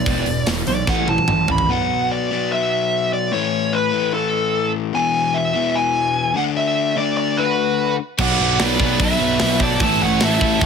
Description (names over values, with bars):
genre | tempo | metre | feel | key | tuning
hard rock | 148 BPM | 4/4 | straight | B dorian | A4 = 438 Hz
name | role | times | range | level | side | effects
dark smooth lead guitar | melody | 0.0-10.7 s | A4 to B5 | -20 LUFS | equal | overdrive
overdriven electric guitar | riff | 0.0-1.7, 8.2-10.7 s | E2 to B3 | -24 LUFS | right 15 dB | none
overdriven semi-hollow guitar | riff | 0.0-10.7 s | E2 to D4 | -22 LUFS | left 12 dB | none
fuzz picked electric bass | bass | 0.1-1.6, 8.2-10.7 s | E1 to B1 | -23 LUFS | right 1 dB | overdrive
tight metal drum kit | drums | 0.1-1.7, 8.2-10.7 s | crash cymbal, hi-hat, kick drum, snare drum, toms | -21 LUFS | right 1 dB | none
octave-fuzz lead guitar | second line | 7.4-10.7 s | F#4 to E5 | -26 LUFS | right 3 dB | distortion
heavy high-gain guitar | riff | 8.2-10.7 s | A2 to E4 | -24 LUFS | right 3 dB | distortion
room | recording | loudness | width
light reverb | none | -16 LUFS | side -6 dB against mid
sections
0.0-1.7 A section; 1.7-10.7 B section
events
lead electric guitar solo 0.0-1.7; drum fill 0.9-1.7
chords
0.1 E5; 0.9 A5; 1.7 Bm; 3.3 A; 4.9 E; 6.4 D; 8.2 Bm; 9.8 A